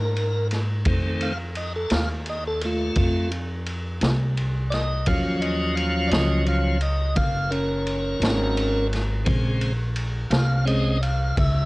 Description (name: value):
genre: slow blues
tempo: 57 BPM (dotted quarters)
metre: 12/8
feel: straight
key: Bb minor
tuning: A4 = 440 Hz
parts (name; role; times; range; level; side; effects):
- tonewheel organ; sustained chords; 0.0-11.7 s; Db3 to F5; -25 LUFS; equal; slow rotary speaker, cassette tape
- upright bass; bass; 0.0-11.7 s; Gb1 to Ab2; -24 LUFS; equal; none
- vintage drum kit; drums; 0.2-11.5 s; kick drum, ride cymbal, snare drum; -28 LUFS; equal; cassette tape
room: light reverb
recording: home recording on cassette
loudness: -21 LUFS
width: side -22 dB against mid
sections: 0.0-11.7 A section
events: tonewheel organ solo 0.0-11.7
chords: 0.0 Bb7(no3); 0.9 F7; 5.1 Ebm9; 9.3 Bbm9